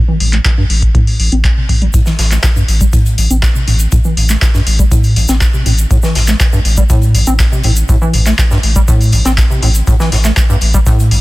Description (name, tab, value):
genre	acid house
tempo	121 BPM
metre	4/4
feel	straight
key	A minor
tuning	A4 = 440 Hz
part	deep acid bass	riff	0.0-11.2 s	G2 to C4	-15 LUFS	equal	lush chorus, sidechain pumping, tape echo
part	round analog bass	bass	0.2-11.2 s	A1	-12 LUFS	equal	tube saturation, sidechain pumping
part	booming analog drum machine	drums	0.2-11.2 s	handclaps, hi-hat	-18 LUFS	left 1 dB	none
part	electronic kick drum	drums	0.5-11.0 s	none	-12 LUFS	equal	none
part	big rock drum kit	drums	1.9-11.2 s	hi-hat, snare drum	-26 LUFS	left 2 dB	high-pass filter on hats, high-pass filter on snare, high-pass filter on room
part	egg shaker	percussion	1.9-11.1 s	none	-25 LUFS	right 2 dB	none
room	little or no reverb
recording	dense, heavily limited modern master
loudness	-9 LUFS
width	side -19 dB against mid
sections	0.0-11.2 A section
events	filter sweep on acid bass 0.0-11.2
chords	0.0 A5